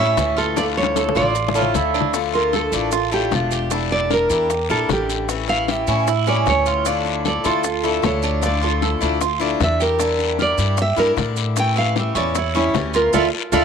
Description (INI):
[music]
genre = latin, Cuban son and guajira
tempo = 153 BPM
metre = 4/4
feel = straight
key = D harmonic minor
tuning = A4 = 440 Hz
[part]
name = nylon-string guitar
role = melody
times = 0.0-13.6 s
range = E4 to G5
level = -21 LUFS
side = right 2 dB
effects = none
[part]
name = picked swing-style acoustic guitar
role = accompaniment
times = 0.0-13.6 s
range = D3 to F4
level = -25 LUFS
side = left 13 dB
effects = none
[part]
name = Cuban tres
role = arpeggios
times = 0.0-13.6 s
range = C#4 to Bb4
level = -23 LUFS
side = right 11 dB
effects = none
[part]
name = upright bass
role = bass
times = 0.0-13.6 s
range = E1 to A2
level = -24 LUFS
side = left 1 dB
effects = none
[part]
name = bongos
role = percussion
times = 0.2-13.6 s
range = none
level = -26 LUFS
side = left 11 dB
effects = none
[part]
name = guiro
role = percussion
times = 0.2-13.6 s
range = none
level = -30 LUFS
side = left 13 dB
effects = none
[part]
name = maracas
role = percussion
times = 0.2-13.6 s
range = none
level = -32 LUFS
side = right 14 dB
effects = none
[part]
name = warm trumpet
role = second line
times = 1.6-2.1 s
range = E4 to F4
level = -24 LUFS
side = right 14 dB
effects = none
[sound]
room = moderate spring reverb, RT60 2.2 s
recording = 1960s-style stereo with parts hard left and right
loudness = -17 LUFS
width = side -6 dB against mid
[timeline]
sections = 0.0-2.1 A section; 2.1-13.6 B section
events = drum fill 0.6-2.1; nylon-string guitar solo 2.1-13.6; band accent 13.1-13.6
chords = 0.0 A7; 0.6 Dmadd9; 3.7 Em7b5; 5.3 A7; 6.9 Dmadd9; 10.0 Em7b5; 11.6 A7; 13.1 Dmadd9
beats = 0.17 | 0.57 0.96 1.35 1.75 | 2.14 2.53 2.93 3.32 | 3.71 4.11 4.50 4.90 | 5.29 5.68 6.08 6.47 | 6.86 7.25 7.64 8.04 | 8.43 8.82 9.21 9.61 | 10.00 10.39 10.78 11.18 | 11.57 11.96 12.35 12.74 | 13.14 13.53